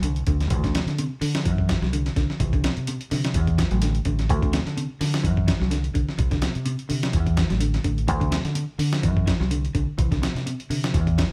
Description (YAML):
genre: afrobeat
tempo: 127 BPM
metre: 4/4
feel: swing 55% on 16ths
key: D mixolydian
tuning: A4 = 439 Hz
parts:
  - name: semi-hollow electric guitar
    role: arpeggios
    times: 0.0-11.3 s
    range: C3 to F#3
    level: -30 LUFS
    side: equal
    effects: harmonic tremolo
  - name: deep dub fingered electric bass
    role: bass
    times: 0.0-11.2 s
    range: A1 to D3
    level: -26 LUFS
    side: equal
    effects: none
  - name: dusty soul sampler-style drum kit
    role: drums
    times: 0.0-11.3 s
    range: hi-hat, kick drum, snare drum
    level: -28 LUFS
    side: equal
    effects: overdrive
room: moderate stone room reverb, RT60 1.0 s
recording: band playing live in one room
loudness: -24 LUFS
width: mono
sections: 0.0-11.3 A section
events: none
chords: 0.0 Csus2; 0.5 D9; 2.4 C69; 4.3 D9; 6.2 C69; 8.1 D9; 10.0 Cadd9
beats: 0.03 | 0.51 0.98 1.45 1.93 | 2.40 2.88 3.35 3.82 | 4.30 4.77 5.24 5.72 | 6.19 6.66 7.14 7.61 | 8.09 8.56 9.04 9.51 | 9.98 10.46 10.94